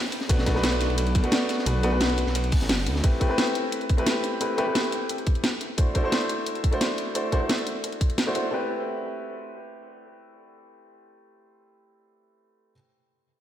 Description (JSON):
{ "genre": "liquid drum and bass", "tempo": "175 BPM", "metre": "4/4", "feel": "straight", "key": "A dorian", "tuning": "A4 = 440 Hz", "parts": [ { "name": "warm baby grand piano", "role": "accompaniment", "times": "0.0-12.7 s", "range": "A3 to C5", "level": "-27 LUFS", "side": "equal", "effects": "analog delay" }, { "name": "crunchy breakbeat drum kit", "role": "drums", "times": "0.1-3.0 s", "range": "hi-hat, ride cymbal, snare drum", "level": "-33 LUFS", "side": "equal", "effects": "high-pass filter on cymbals, studio reverb, high-pass filter on hats, high-pass filter on snare, high-pass filter on room" }, { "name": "garage drum kit", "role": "drums", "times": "0.1-8.4 s", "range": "hi-hat, snare drum", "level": "-28 LUFS", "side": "equal", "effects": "studio reverb" }, { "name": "swelling detuned saw bass", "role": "bass", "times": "0.3-3.0 s", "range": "F#1 to D2", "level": "-25 LUFS", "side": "equal", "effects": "none" }, { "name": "electronic kick drum", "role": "drums", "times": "0.3-8.1 s", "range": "none", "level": "-22 LUFS", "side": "equal", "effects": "studio reverb" } ], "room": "moderate lush hall reverb, RT60 1.9 s, studio ambience", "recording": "dreamy mix soaked in reverb", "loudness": "-22 LUFS", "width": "side -11 dB against mid", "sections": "0.0-8.5 A section; 8.5-11.3 B section", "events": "none", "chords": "0.3 Bm7; 3.0 Am9; 5.8 D7; 8.5 Am9", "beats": "| 0.29 0.64 0.98 1.32 | 1.67 2.01 2.35 2.69 | 3.04 3.38 3.72 4.07 | 4.41 4.75 5.09 5.44 | 5.78 6.12 6.47 6.81 | 7.15 7.49 7.84 8.18 | 8.52 8.87 9.21 9.55 | 9.89 10.24 10.58 10.92" }